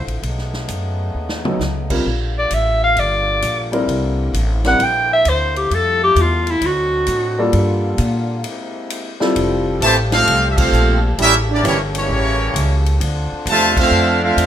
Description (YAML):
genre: jazz, big band swing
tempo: 132 BPM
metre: 4/4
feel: swing 67% on 8ths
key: F major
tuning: A4 = 440 Hz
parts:
  - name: bright clarinet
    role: melody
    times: 0.0-7.5 s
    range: E4 to G5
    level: -16 LUFS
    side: equal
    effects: none
  - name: clear trombone section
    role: sustained chords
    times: 0.0-14.5 s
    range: C3 to A4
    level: -27 LUFS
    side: left 2 dB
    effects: none
  - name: upright bass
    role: bass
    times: 0.0-14.5 s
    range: F1 to Bb2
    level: -20 LUFS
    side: equal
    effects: none
  - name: swinging big-band drum kit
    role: drums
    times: 0.1-14.5 s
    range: crash cymbal, hi-hat, kick drum, ride cymbal, snare drum, toms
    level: -26 LUFS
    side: equal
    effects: none
  - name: warm grand piano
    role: accompaniment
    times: 1.5-9.8 s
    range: F#3 to Bb4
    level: -19 LUFS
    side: left 1 dB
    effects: none
  - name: brilliant trumpet section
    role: melody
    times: 9.8-14.5 s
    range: Bb3 to A5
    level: -16 LUFS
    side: equal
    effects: none
  - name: warm trombone section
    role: second line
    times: 9.8-14.5 s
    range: C3 to F4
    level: -20 LUFS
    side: right 4 dB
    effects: none
room: light reverb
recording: minimal, uncompressed stereo recording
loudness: -14 LUFS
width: side -10 dB against mid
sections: 0.0-9.4 A section; 9.4-14.5 B section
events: clarinet solo 0.0-9.4; drum fill 1.1-1.6; break 8.4-9.4; band accent 10.5, 13.7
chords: 0.2 B9; 2.1 Bb6; 3.9 C9; 5.7 Fmaj9; 6.6 D7b9; 7.5 Gm7; 8.4 C7b13; 9.4 Fmaj9; 11.2 A7b9; 13.0 Dm9